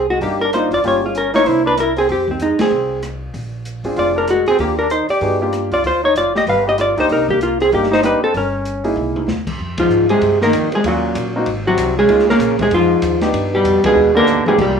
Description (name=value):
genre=jazz, small-group swing and bop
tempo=192 BPM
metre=4/4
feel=swing 61% on 8ths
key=C minor, F minor from 9.6 s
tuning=A4 = 438 Hz
part: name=hollow-body jazz guitar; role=melody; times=0.0-14.8 s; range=F3 to F5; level=-15 LUFS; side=equal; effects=plate reverb
part: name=brilliant trombone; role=second line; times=0.0-14.8 s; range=Ab2 to B4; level=-20 LUFS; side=right 2 dB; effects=plate reverb
part: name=upright bass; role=bass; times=0.0-14.8 s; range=F1 to Ab2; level=-26 LUFS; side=equal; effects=none
part: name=clear grand piano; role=accompaniment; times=0.2-1.8, 3.8-14.6 s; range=Ab3 to F5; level=-21 LUFS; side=equal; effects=plate reverb
part: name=open jazz drum kit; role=drums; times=0.2-14.7 s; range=crash cymbal, hi-hat, kick drum, ride cymbal, rim click, snare drum, toms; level=-26 LUFS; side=left 1 dB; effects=none
room=moderate studio ambience, RT60 0.5 s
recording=rough home demo mix, small room ambience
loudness=-13 LUFS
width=side -6 dB against mid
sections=0.0-9.6 A section; 9.6-14.8 B section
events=band accent 2.6, 9.7, 13.8; drum fill 9.0-9.3, 14.3-14.6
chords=0.0 Cm7; 0.8 Gm7b5; 1.5 C7; 2.1 Fm; 3.3 Bb7; 4.6 Ebmaj7; 5.8 Ebmaj7sus2; 6.5 G5; 7.1 Cm7; 8.3 Gdim; 9.0 C7alt; 9.6 Fm9; 10.8 Ebm9; 11.5 Ab7; 12.1 Db69; 13.3 G7b13